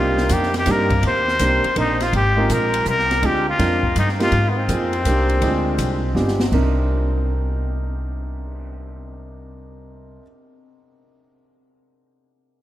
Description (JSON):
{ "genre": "jazz, small-group swing and bop", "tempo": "164 BPM", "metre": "3/4", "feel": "swing 66% on 8ths", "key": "C minor", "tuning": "A4 = 438 Hz", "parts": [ { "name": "trumpet with straight mute", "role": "melody", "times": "0.0-6.2 s", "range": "B3 to C5", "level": "-21 LUFS", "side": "left 1 dB", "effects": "none" }, { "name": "warm grand piano", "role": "accompaniment", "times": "0.0-10.2 s", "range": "C3 to Bb4", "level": "-24 LUFS", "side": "right 1 dB", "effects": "none" }, { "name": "upright bass", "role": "bass", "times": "0.0-10.2 s", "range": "G1 to Ab2", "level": "-22 LUFS", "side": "equal", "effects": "none" }, { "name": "open jazz drum kit", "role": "drums", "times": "0.2-8.6 s", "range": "crash cymbal, cymbal swell, hi-hat, kick drum, ride cymbal, snare drum", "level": "-28 LUFS", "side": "equal", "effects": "none" } ], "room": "wet cathedral reverb, RT60 5.2 s", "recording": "in a vast, echoing space", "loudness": "-17 LUFS", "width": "side -13 dB against mid", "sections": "0.0-2.1 A section; 2.1-6.5 B section; 6.5-8.7 C section", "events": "drum fill 6.2-6.5", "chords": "0.0 Cm7; 2.1 Ab6; 2.9 Bbsus2/C; 3.2 Dm7b5; 4.0 Eb69/G; 4.3 Ab6; 5.1 Cm9; 5.4 Dm7b5; 6.2 G7b9; 6.5 Cm9" }